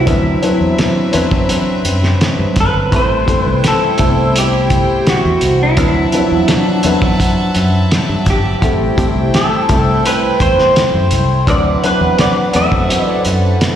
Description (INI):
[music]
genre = lush 1970s-style soul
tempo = 84 BPM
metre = 4/4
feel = straight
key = unclear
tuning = A4 = 440 Hz
[part]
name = electric guitar through a small old amp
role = melody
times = 0.0-13.2 s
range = E4 to E5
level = -16 LUFS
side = right 1 dB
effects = wide subtle chorus, plate reverb, slapback echo
[part]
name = warm studio violin section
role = second line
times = 0.0-13.8 s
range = C4 to A5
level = -21 LUFS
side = equal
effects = plate reverb, slapback echo
[part]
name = warm grand piano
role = accompaniment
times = 0.0-13.8 s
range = F3 to B4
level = -18 LUFS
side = left 2 dB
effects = plate reverb, slapback echo
[part]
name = electric guitar through a small old amp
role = riff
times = 0.0-0.2, 12.5-13.8 s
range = A3 to A4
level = -23 LUFS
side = right 6 dB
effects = vibrato effect, slapback echo
[part]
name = fingered electric bass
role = bass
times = 0.0-13.5 s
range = G1 to G2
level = -16 LUFS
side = equal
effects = none
[part]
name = cloth-damped thuddy drum kit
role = drums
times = 0.1-13.8 s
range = hi-hat, kick drum, snare drum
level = -16 LUFS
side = equal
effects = none
[sound]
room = moderate club reverb, RT60 0.8 s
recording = live gig heard through the venue's PA, recital hall reverb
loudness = -11 LUFS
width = side -10 dB against mid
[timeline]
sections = 0.0-13.8 A section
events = none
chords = 0.1 D13; 2.9 Am7; 5.8 D13; 8.6 Am7; 11.5 D13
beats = | 0.07 0.79 1.50 2.21 | 2.92 3.64 4.35 5.06 | 5.78 6.49 7.20 7.91 | 8.63 9.34 10.05 10.76 | 11.47 12.19 12.90 13.61